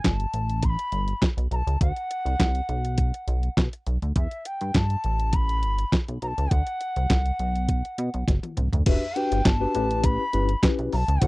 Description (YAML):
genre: early-eighties boogie funk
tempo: 102 BPM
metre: 4/4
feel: straight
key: unclear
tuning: A4 = 440 Hz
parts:
  - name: bright reedy bansuri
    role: melody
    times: 0.0-11.3 s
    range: E5 to C6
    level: -29 LUFS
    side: left 1 dB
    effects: none
  - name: chorused synth bass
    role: bass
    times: 0.0-11.3 s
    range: E1 to B2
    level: -25 LUFS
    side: equal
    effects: none
  - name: clean 12-bit digital drum machine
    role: drums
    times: 0.0-11.3 s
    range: crash cymbal, handclaps, hi-hat, kick drum, snare drum, toms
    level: -23 LUFS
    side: equal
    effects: none
  - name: mellow tine electric piano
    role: accompaniment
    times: 8.9-11.3 s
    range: C#4 to C5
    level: -27 LUFS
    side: left 4 dB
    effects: medium stereo tremolo
room: little or no reverb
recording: dry, close 1970s-style studio recording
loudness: -22 LUFS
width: side -21 dB against mid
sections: 0.0-8.9 A section; 8.9-11.3 B section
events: drum fill 8.3-8.9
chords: 0.3 A7sus2; 1.8 D7; 2.7 B5; 4.2 Em; 5.0 A7sus2; 6.5 D7; 7.4 B5; 8.9 Em7; 9.7 A9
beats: 0.04 0.63 1.22 | 1.81 2.40 2.98 3.57 | 4.16 4.75 5.34 5.92 | 6.51 7.10 7.69 8.28 | 8.87 9.45 10.04 10.63 | 11.22